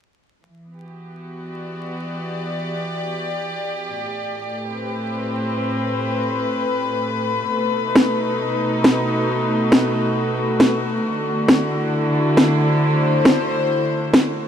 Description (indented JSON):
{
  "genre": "future garage",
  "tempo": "136 BPM",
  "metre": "4/4",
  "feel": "swing 60% on 16ths",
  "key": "E minor",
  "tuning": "A4 = 445 Hz",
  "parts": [
    { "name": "warm chamber string section", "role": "sustained chords", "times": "0.5-14.5 s", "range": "A2 to D5", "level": "-20 LUFS", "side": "left 1 dB", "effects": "none" },
    { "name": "electronic snare drum", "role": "drums", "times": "8.0-14.2 s", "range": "none", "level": "-18 LUFS", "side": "equal", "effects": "overdrive, studio reverb" }
  ],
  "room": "moderate huge ambient reverb, RT60 9.2 s",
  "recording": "vinyl crackle",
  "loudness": "-18 LUFS",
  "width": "side -9 dB against mid",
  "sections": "0.5-14.5 A section",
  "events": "fade-in on string section 0.5-14.5",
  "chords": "0.5 Em9; 4.0 Am9; 7.5 B7; 11.0 D9"
}